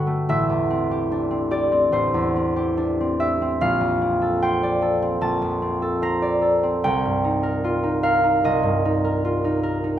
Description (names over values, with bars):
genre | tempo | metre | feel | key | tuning
classical, solo harp piece | 74 BPM | 4/4 | rubato | unclear | A4 = 440 Hz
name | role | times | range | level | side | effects
concert harp | solo | 0.0-10.0 s | A1 to Bb5 | -19 LUFS | equal | none
room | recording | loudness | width
wet recital hall reverb, RT60 1.4 s | none | -19 LUFS | side -11 dB against mid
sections
0.0-10.0 A section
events
none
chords
0.3 Am11; 3.6 Bbmaj9; 6.8 Cm11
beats
| 0.28 1.11 1.93 2.76 | 3.60 4.42 5.22 6.03 | 6.84 7.64 8.45 9.25